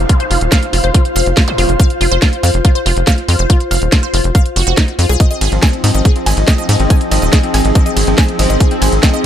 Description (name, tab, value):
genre	psychedelic trance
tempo	141 BPM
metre	4/4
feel	straight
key	F minor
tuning	A4 = 440 Hz
part	tight sequencer bass	bass	0.0-9.0 s	Eb1 to Ab2	-14 LUFS	equal	none
part	downlifter and zap	sound effects	0.0-1.8 s	none	-27 LUFS	equal	none
part	ethereal airy pad	texture	0.0-9.3 s	Eb4 to F5	-19 LUFS	left 1 dB	ensemble chorus, built-in reverb, sidechain pumping
part	wide unison pluck	riff	0.1-9.2 s	Eb4 to Ab5	-20 LUFS	moving between left 3 dB and right 4 dB	auto-pan, sidechain pumping, ping-pong delay
part	electronic kick drum	drums	0.1-9.1 s	none	-10 LUFS	equal	none
part	garage drum kit	drums	0.1-9.2 s	hi-hat, ride cymbal, snare drum	-18 LUFS	equal	none
part	pulsing gated texture	sustained chords	5.2-9.3 s	F3 to C4	-18 LUFS	left 1 dB	chorus, built-in reverb, sidechain pumping
room	little or no reverb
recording	none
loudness	-10 LUFS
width	side -10 dB against mid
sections	0.0-9.3 A section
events	none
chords	0.0 F5; 5.2 Ab5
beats	| 0.09 0.52 0.94 1.37 | 1.80 2.22 2.65 3.07 | 3.50 3.92 4.35 4.77 | 5.20 5.62 6.05 6.48 | 6.90 7.33 7.75 8.18 | 8.60 9.03